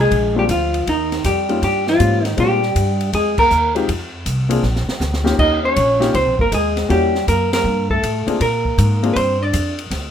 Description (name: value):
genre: jazz, small-group swing and bop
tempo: 159 BPM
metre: 4/4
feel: swing 66% on 8ths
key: Bb mixolydian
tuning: A4 = 438 Hz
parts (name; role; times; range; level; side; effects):
- vintage hollow-body jazz guitar; melody; 0.0-9.8 s; Eb4 to Eb5; -18 LUFS; equal; none
- breathy trombone; second line; 0.0-9.8 s; Eb3 to Eb4; -24 LUFS; right 2 dB; none
- upright bass; bass; 0.0-10.1 s; G1 to Bb2; -20 LUFS; equal; none
- open jazz drum kit; drums; 0.1-10.0 s; crash cymbal, hi-hat, kick drum, ride cymbal, snare drum; -26 LUFS; equal; none
- warm baby grand piano; accompaniment; 0.4-9.2 s; G3 to Ab4; -21 LUFS; left 4 dB; none
room: light reverb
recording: close, detailed microphones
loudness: -15 LUFS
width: side -9 dB against mid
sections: 0.0-10.1 A section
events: band accent 3.3, 7.5; drum fill 4.6-5.4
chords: 0.0 Bb7; 0.9 Eb7; 2.4 Bb7; 3.9 Fm; 4.6 Bb; 5.4 Eb7; 6.9 Edim7; 8.4 Bb7